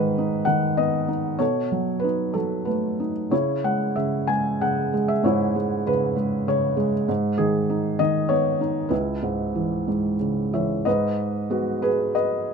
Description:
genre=classical, lyrical solo piano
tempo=88-100 BPM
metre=3/4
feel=rubato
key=C# minor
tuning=A4 = 441 Hz
part: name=felt-muted upright piano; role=solo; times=0.0-12.5 s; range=C#2 to G#5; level=-21 LUFS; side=equal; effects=none
room=light reverb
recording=close, detailed microphones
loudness=-21 LUFS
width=side -5 dB against mid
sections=0.0-10.9 A section; 10.9-12.5 B section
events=none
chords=0.0 G#m; 1.4 B7; 3.3 C#m7; 7.1 G#m; 8.9 C#m7; 10.9 G#m7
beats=0.18 0.79 | 1.40 2.03 2.67 | 3.32 3.97 4.62 | 5.25 5.86 6.48 | 7.09 7.70 8.30 | 8.92 9.55 10.20 | 10.87 11.52 12.15

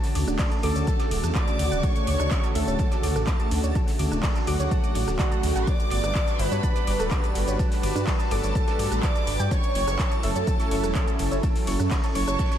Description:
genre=progressive house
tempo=125 BPM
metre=4/4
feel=straight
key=D major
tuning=A4 = 442 Hz
part: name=lush unison pad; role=sustained chords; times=0.0-12.6 s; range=C#3 to B4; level=-30 LUFS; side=equal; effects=chorus, sidechain pumping
part: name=cloth-damped thuddy drum kit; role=drums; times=0.0-12.6 s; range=hi-hat, ride cymbal, snare drum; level=-43 LUFS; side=equal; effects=none
part: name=deep house drum kit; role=drums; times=0.0-12.6 s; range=handclaps, hi-hat, ride cymbal, rim click, shaker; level=-34 LUFS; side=equal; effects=overdrive, studio reverb
part: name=backwards swelling texture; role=texture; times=0.0-12.6 s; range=A5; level=-42 LUFS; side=right 3 dB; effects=built-in reverb, lush chorus, sidechain pumping
part: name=soft round pluck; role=arpeggios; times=0.2-12.6 s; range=C#4 to D6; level=-33 LUFS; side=right 1 dB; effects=chorus, sidechain pumping, tape echo
part: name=dark detuned saw bass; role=bass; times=0.2-12.4 s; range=D1 to G2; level=-26 LUFS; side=equal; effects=sidechain pumping
part: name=electronic kick drum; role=drums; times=0.4-12.5 s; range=none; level=-25 LUFS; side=equal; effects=overdrive, studio reverb
part: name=wide unison lead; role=melody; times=0.6-12.6 s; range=F#4 to D5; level=-31 LUFS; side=equal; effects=wide subtle chorus, sidechain pumping, ping-pong delay
part: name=warm chamber violin section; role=second line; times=0.6-12.6 s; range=F#5 to D6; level=-36 LUFS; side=right 2 dB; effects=sidechain pumping, tape echo
room=moderate lush hall reverb, RT60 1.6 s, studio reverb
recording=dreamy mix soaked in reverb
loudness=-22 LUFS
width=side -10 dB against mid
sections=0.0-12.6 A section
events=none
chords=0.0 Dmaj7; 5.7 Gmaj7; 9.5 F#m7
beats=0.39 0.87 1.35 | 1.83 2.31 2.79 3.27 | 3.75 4.23 4.71 5.19 | 5.67 6.15 6.63 7.11 | 7.59 8.07 8.55 9.03 | 9.51 9.99 10.47 10.95 | 11.43 11.91 12.39

